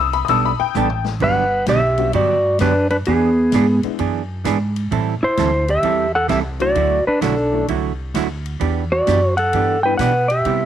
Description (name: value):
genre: country, western swing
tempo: 130 BPM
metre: 4/4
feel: swing 67% on 8ths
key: G major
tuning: A4 = 440 Hz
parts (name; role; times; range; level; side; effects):
- honky-tonk upright piano; accompaniment; 0.0-10.0 s; E3 to E6; -20 LUFS; left 15 dB; none
- upright bass; bass; 0.0-10.7 s; G1 to C3; -22 LUFS; equal; none
- swinging big-band drum kit; drums; 0.1-10.6 s; crash cymbal, hi-hat, kick drum, ride cymbal, snare drum, toms; -33 LUFS; left 8 dB; none
- hollow-body jazz guitar; accompaniment; 0.3-10.7 s; C3 to A4; -22 LUFS; right 12 dB; none
- clean lap steel guitar; melody; 1.2-10.7 s; B3 to G5; -16 LUFS; equal; none
room: light reverb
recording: 1960s-style stereo with parts hard left and right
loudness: -15 LUFS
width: side -10 dB against mid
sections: 0.0-1.2 A section; 1.2-10.7 B section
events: honky-tonk piano solo 0.0-1.2; drum fill 0.7-1.2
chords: 0.0 Gadd9; 1.2 Gmaj7; 3.1 E7; 4.9 Am7; 6.8 Dadd9; 8.6 Em7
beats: 0.28 0.74 | 1.21 1.67 2.13 2.59 | 3.05 3.52 3.98 4.44 | 4.90 5.37 5.83 6.29 | 6.75 7.21 7.68 8.14 | 8.60 9.06 9.53 9.99 | 10.45